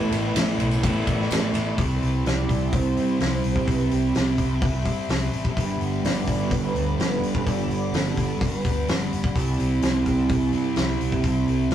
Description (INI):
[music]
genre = rock, shoegaze and dream pop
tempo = 127 BPM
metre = 4/4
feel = straight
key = unclear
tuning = A4 = 439 Hz
[part]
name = warm velvety synth lead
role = melody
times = 0.0-9.1 s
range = G4 to D5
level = -33 LUFS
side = left 1 dB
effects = chorus
[part]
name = icy glass pad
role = sustained chords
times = 0.0-11.7 s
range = G4 to B5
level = -34 LUFS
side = equal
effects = chorus, built-in reverb
[part]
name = overdriven semi-hollow guitar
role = riff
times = 0.0-11.7 s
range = G2 to A4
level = -26 LUFS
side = right 4 dB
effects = none
[part]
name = raw garage guitar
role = riff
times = 0.0-1.8 s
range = A2 to A3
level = -27 LUFS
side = right 1 dB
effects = overdrive
[part]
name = thick fuzz guitar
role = riff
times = 0.0-11.7 s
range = G2 to C4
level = -31 LUFS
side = left 4 dB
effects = distortion
[part]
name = vintage muted fingered electric bass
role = bass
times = 0.0-11.7 s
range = G1 to G2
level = -28 LUFS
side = left 1 dB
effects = none
[part]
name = tambourine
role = percussion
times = 0.0-1.7 s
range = none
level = -42 LUFS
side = left 5 dB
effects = none
[part]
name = loose indie drum kit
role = drums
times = 0.1-11.7 s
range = hi-hat, kick drum, ride cymbal, snare drum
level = -26 LUFS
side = left 1 dB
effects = none
[sound]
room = wet studio reverb, RT60 0.6 s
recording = rough rehearsal-room recording, warm saturation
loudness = -21 LUFS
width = side -10 dB against mid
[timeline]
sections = 0.0-1.8 A section; 1.8-11.7 B section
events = none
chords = 0.0 Asus2; 1.8 Cmaj7; 5.6 Gmaj7; 9.4 Cmaj7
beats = 0.36 0.83 1.30 | 1.78 2.25 2.72 3.20 | 3.67 4.14 4.62 5.09 | 5.57 6.04 6.51 6.99 | 7.46 7.93 8.40 8.88 | 9.35 9.82 10.30 10.77 | 11.24 11.71